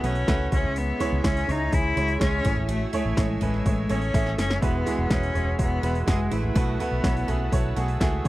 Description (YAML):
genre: piano-driven pop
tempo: 124 BPM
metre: 4/4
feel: straight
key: unclear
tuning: A4 = 440 Hz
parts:
  - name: rich cello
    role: melody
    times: 0.0-7.7 s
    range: G#3 to E4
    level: -28 LUFS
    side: left 3 dB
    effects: none
  - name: clear concert grand piano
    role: accompaniment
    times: 0.0-8.3 s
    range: A2 to E5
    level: -30 LUFS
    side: right 3 dB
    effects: none
  - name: sweeping resonant pad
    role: sustained chords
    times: 0.0-8.3 s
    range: A4 to E6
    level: -39 LUFS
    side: equal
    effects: chorus
  - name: picked steel-string acoustic guitar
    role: riff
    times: 0.0-7.9 s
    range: B3 to G#4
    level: -36 LUFS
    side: right 6 dB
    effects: none
  - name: vintage muted fingered electric bass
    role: bass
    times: 0.0-8.3 s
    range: E1 to C#2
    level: -27 LUFS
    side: equal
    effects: none
  - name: deep house drum kit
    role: drums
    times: 0.0-8.3 s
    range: hi-hat, kick drum, snare drum, toms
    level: -26 LUFS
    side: equal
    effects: overdrive
room: little or no reverb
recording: dry, close 1970s-style studio recording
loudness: -22 LUFS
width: side -17 dB against mid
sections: 0.0-8.3 A section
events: drum fill 4.1-4.6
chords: 0.0 B7sus4; 0.5 C#m; 2.4 Amaj7; 4.6 Eadd9; 6.6 B7sus4